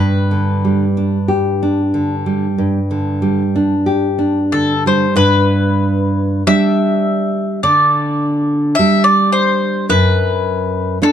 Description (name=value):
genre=romantic duo for mandolin and classical guitar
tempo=43-54 BPM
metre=4/4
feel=rubato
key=G major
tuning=A4 = 440 Hz
part: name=bowl-back mandolin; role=melody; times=0.0-11.1 s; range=A4 to E5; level=-16 LUFS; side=left 2 dB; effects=none
part: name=nylon-string guitar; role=accompaniment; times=0.0-11.1 s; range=F#2 to G4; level=-14 LUFS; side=right 1 dB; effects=none
room=moderate booth ambience, RT60 0.2 s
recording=dark, warm production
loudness=-13 LUFS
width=side -9 dB against mid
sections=0.0-5.2 A section; 5.2-11.1 B section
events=none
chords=0.0 G; 9.9 N.C.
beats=1.30 2.59 3.86 | 5.16 6.46 7.63 8.78 | 9.90 11.01